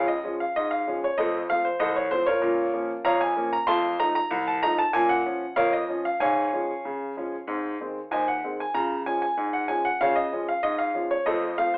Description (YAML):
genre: ragtime piano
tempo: 95 BPM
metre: 2/4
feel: straight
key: Db major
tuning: A4 = 439 Hz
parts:
  - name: warm upright piano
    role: solo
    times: 0.0-11.8 s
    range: C2 to C6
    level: -22 LUFS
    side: equal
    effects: none
room: wet studio reverb, RT60 0.5 s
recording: heard from further back in the room, telephone sound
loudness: -23 LUFS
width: side -23 dB against mid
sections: 0.0-11.8 A section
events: none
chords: 0.0 Db; 1.2 F; 2.4 Bbm; 3.7 F7; 4.9 Bbm; 6.2 Db/Ab; 7.5 Ab; 8.7 Db; 11.3 F